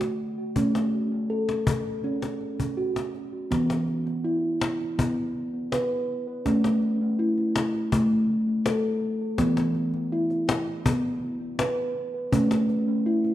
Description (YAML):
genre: world meditative, meditative tuned percussion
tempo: 82 BPM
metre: 4/4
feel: straight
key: unclear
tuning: A4 = 440 Hz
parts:
  - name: steel tongue drum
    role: arpeggios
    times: 0.0-13.3 s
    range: D3 to B4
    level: -24 LUFS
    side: equal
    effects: tape echo
  - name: cajon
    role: percussion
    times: 0.0-13.3 s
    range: none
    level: -29 LUFS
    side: left 2 dB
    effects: none
room: wet recital hall reverb, RT60 1.7 s, studio reverb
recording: none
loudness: -23 LUFS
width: side -13 dB against mid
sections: 0.0-3.5 A section; 3.5-13.3 B section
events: none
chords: 0.0 D; 0.6 A; 3.5 E5; 6.5 A; 9.4 E5; 12.3 A